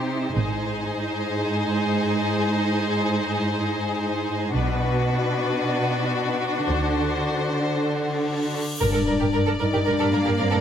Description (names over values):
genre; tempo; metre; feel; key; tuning
cinematic; 114 BPM; 4/4; straight; unclear; A4 = 443 Hz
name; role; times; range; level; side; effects
clear symphonic violin section; melody; 0.0-10.6 s; B4 to D5; -31 LUFS; left 4 dB; none
rich chamber violin section; second line; 0.0-10.6 s; F#4 to Bb4; -29 LUFS; left 3 dB; none
rich studio viola section; accompaniment; 0.0-10.6 s; D4 to Bb4; -28 LUFS; right 1 dB; none
rich symphonic cello section; bass; 0.0-10.6 s; Ab2 to Bb3; -26 LUFS; right 1 dB; none
bright studio double bass section; bass; 0.4-0.8, 4.5-10.6 s; Ab1 to G2; -26 LUFS; right 2 dB; none
cymbal swell and impact; sound effects; 8.1-10.6 s; none; -33 LUFS; equal; none
mellow French horn section; sustained chords; 8.8-10.6 s; C4 to Eb4; -24 LUFS; left 3 dB; none
room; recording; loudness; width
moderate scoring stage reverb, RT60 2.0 s; none; -21 LUFS; side -9 dB against mid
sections
0.0-8.8 A section; 8.8-10.6 B section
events
build-up 0.0-8.8; cymbal swell 8.1-8.8; impact 8.8-10.6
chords
0.4 Ab; 4.5 Bm; 6.7 D7; 8.8 Gm